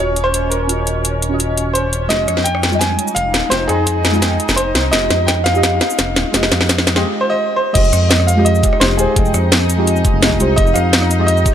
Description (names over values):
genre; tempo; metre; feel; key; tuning
liquid drum and bass; 170 BPM; 4/4; straight; F minor; A4 = 445 Hz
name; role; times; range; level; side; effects
clear concert grand piano; melody; 0.0-11.5 s; Ab4 to Ab5; -19 LUFS; equal; ping-pong delay
deep mellow chord stab; accompaniment; 0.0-11.5 s; G3 to G5; -21 LUFS; right 1 dB; chorus, tape echo
shimmering ambient pad; sustained chords; 0.0-11.5 s; Db4 to Eb4; -24 LUFS; left 1 dB; chorus, built-in reverb, sidechain pumping
smooth synth bass; bass; 0.0-11.4 s; Eb1 to F2; -18 LUFS; equal; none
drum and bass drum kit; drums; 0.2-11.5 s; cabasa, crash cymbal, hi-hat, rim click, snare drum; -17 LUFS; equal; none
electronic kick drum; drums; 2.1-11.5 s; none; -18 LUFS; equal; high-pass filter on kick, high-pass filter on room
room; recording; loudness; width
light reverb; none; -12 LUFS; side -9 dB against mid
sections
0.0-2.1 A section; 2.1-7.8 B section; 7.8-11.5 C section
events
build-up 2.1-7.8; drum fill 2.1-7.0; filter sweep on ambient pad 2.1-7.8; break 7.0-7.8; drop 7.8-11.5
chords
0.0 Ebm9; 2.1 Fm9